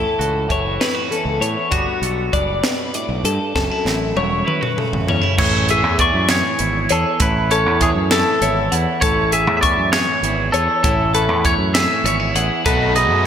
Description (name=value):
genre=math rock and midwest emo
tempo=66 BPM (dotted quarters)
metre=6/8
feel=straight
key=A major from 5.4 s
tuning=A4 = 440 Hz
part: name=twangy electric guitar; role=accompaniment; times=0.0-13.3 s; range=E2 to A4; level=-24 LUFS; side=right 6 dB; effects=phaser
part: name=twelve-string electric guitar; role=arpeggios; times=0.0-13.3 s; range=F#4 to C#6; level=-21 LUFS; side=left 5 dB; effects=slapback echo
part: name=growling fingered electric bass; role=bass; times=0.0-13.3 s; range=E1 to A2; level=-22 LUFS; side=right 1 dB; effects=overdrive
part: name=crisp fusion drum kit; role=drums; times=0.2-13.1 s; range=crash cymbal, hi-hat, kick drum, snare drum, toms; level=-21 LUFS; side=right 1 dB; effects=none
part: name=twangy electric guitar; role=melody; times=5.4-13.2 s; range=G#4 to E5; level=-19 LUFS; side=equal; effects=none
part: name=overdriven electric guitar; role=riff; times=12.7-13.3 s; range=A3 to B4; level=-22 LUFS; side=equal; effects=slapback echo
room=wet lush hall reverb, RT60 1.9 s, studio ambience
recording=big arena sound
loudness=-15 LUFS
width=side -8 dB against mid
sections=0.0-5.4 A section; 5.4-13.3 B section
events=drum fill 3.5-5.4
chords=0.0 A6; 1.7 Gmaj7; 3.5 F#m7; 5.4 Amaj7; 12.7 B7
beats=0.81 | 1.72 2.64 | 3.55 4.46 | 5.37 6.29 | 7.20 8.11 | 9.02 9.93 | 10.84 11.75 | 12.66